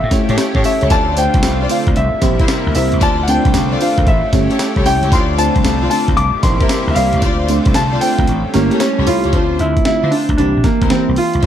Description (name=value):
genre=R&B, new jack swing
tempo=114 BPM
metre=4/4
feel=swing 66% on 16ths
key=D minor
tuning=A4 = 436 Hz
part: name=warm concert grand piano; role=melody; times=0.0-11.5 s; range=Bb3 to D6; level=-18 LUFS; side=equal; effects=none
part: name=lush unison pad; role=sustained chords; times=0.0-9.3 s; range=C3 to G4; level=-23 LUFS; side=equal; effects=chorus
part: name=vintage slap bass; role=bass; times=0.0-11.5 s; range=G1 to D3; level=-18 LUFS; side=equal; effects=none
part: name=FM electric piano with soft pad layer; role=accompaniment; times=0.1-11.5 s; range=D3 to E5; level=-20 LUFS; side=equal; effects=chorus, phaser
part: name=breakbeat sampler-style drum kit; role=drums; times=0.1-11.5 s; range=hi-hat, kick drum, snare drum, tambourine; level=-17 LUFS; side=equal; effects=none
part: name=warm studio string section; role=stabs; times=0.3-11.5 s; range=C4 to D5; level=-24 LUFS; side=left 4 dB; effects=none
room=light reverb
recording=dark, warm production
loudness=-12 LUFS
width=side -10 dB against mid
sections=0.0-9.3 A section; 9.3-11.5 B section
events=kick muted 8.3-9.3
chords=0.0 A7; 0.9 Dm7; 2.0 C7; 3.0 Dm7; 4.1 A7; 5.1 Dm7; 6.2 C7; 7.2 Dm7; 8.3 A7; 9.3 Dm7; 10.4 C7